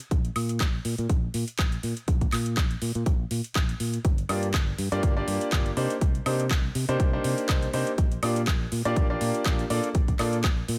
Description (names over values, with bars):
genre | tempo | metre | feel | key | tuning
piano house | 122 BPM | 4/4 | swing 55% on 16ths | G minor | A4 = 439 Hz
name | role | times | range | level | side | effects
garage drum kit | drums | 0.0-10.8 s | handclaps, hi-hat, woodblock | -34 LUFS | equal | overdrive, studio ambience
fingered electric bass | bass | 0.1-10.8 s | G1 to C3 | -32 LUFS | equal | tube saturation, sidechain pumping
electronic kick drum | drums | 0.1-10.5 s | none | -27 LUFS | equal | studio ambience
clear concert grand piano | riff | 4.3-10.4 s | Bb3 to D5 | -31 LUFS | equal | sidechain pumping, tape echo
room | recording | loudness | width
digital ambience | none | -26 LUFS | mono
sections
0.0-10.8 A section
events
none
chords
0.0 N.C.; 4.0 Gm7; 5.8 Cm9; 8.0 Gm7/Bb; 9.7 Bbmaj7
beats
| 0.11 0.60 1.09 1.59 | 2.08 2.57 3.06 3.55 | 4.05 4.54 5.03 5.52 | 6.01 6.50 7.00 7.49 | 7.98 8.47 8.96 9.46 | 9.95 10.44